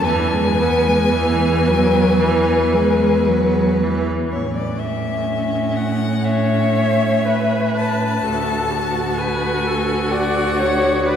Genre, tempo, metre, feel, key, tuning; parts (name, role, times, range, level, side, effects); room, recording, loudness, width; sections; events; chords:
classical, slow romantic movement for string quartet; 55-65 BPM; 4/4; rubato; A major; A4 = 441 Hz
rich violin; melody; 0.0-11.2 s; C#5 to A5; -23 LUFS; left 5 dB
rich viola; accompaniment; 0.0-11.2 s; E3 to D5; -20 LUFS; right 1 dB
clear cello; bass; 0.0-11.2 s; D2 to A2; -21 LUFS; right 2 dB
warm violin; second line; 0.1-11.2 s; C#4 to B4; -22 LUFS; left 1 dB
wet cathedral reverb, RT60 4.1 s; heard from further back in the room; -16 LUFS; side -8 dB against mid
0.0-4.3 A section; 4.3-11.2 B section
0.0 E; 4.3 A; 8.3 D